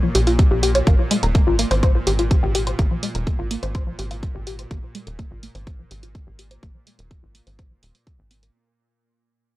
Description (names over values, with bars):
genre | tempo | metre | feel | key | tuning
melodic techno | 125 BPM | 4/4 | straight | unclear | A4 = 440 Hz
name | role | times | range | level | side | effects
tight sequenced synth | arpeggios | 0.0-8.5 s | F3 to Db5 | -23 LUFS | left 1 dB | chorus, phaser, sidechain pumping, tape echo
tight sequencer bass | bass | 0.0-8.5 s | Eb1 to Bb1 | -24 LUFS | equal | tube saturation, sidechain pumping
bowed-like drone | drone | 0.0-8.6 s | Bb2 | -32 LUFS | equal | built-in reverb, sidechain pumping
electronic hi-hat | drums | 0.1-8.5 s | none | -27 LUFS | right 1 dB | none
electronic kick drum | drums | 0.4-8.2 s | none | -18 LUFS | equal | none
room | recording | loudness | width
little or no reverb | dry, gritty hardware recording, cassette tape | -17 LUFS | side -17 dB against mid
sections
0.0-8.5 A section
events
fade-out 0.0-8.5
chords
0.0 Bb5; 0.9 N.C.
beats
0.39 | 0.87 1.35 1.83 2.31 | 2.79 3.27 3.75 4.23 | 4.71 5.19 5.67 6.15 | 6.63 7.11 7.59 8.07